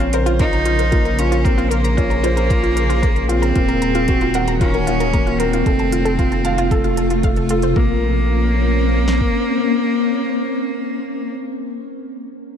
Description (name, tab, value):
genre	piano and strings electronica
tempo	114 BPM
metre	4/4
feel	straight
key	Bb minor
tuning	A4 = 440 Hz
part	bright cello	melody	0.0-11.3 s	Bb3 to Eb4	-22 LUFS	right 1 dB	ping-pong delay
part	granular cloud pad	sustained chords	0.0-11.3 s	C3 to C5	-22 LUFS	left 1 dB	built-in reverb, sidechain pumping
part	wide unison pluck	arpeggios	0.0-8.0 s	F4 to Bb5	-25 LUFS	left 1 dB	sidechain pumping, ping-pong delay
part	felt-muted upright piano	riff	0.0-12.6 s	A3 to Gb5	-24 LUFS	left 1 dB	ping-pong delay
part	round analog bass	bass	0.0-9.3 s	Eb1 to Bb1	-20 LUFS	equal	sidechain pumping
part	electronic hi-hat	drums	0.0-7.7 s	none	-33 LUFS	right 6 dB	none
part	deep house drum kit	drums	0.4-9.3 s	kick drum, snare drum	-19 LUFS	equal	none
room	moderate recital hall reverb, RT60 1.4 s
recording	dark, warm production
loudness	-15 LUFS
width	side -8 dB against mid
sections	0.0-7.8 A section; 7.8-12.0 B section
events	drop 0.0-7.8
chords	0.0 Bbmadd9; 3.6 Ebm; 5.7 F; 7.8 Bbmadd9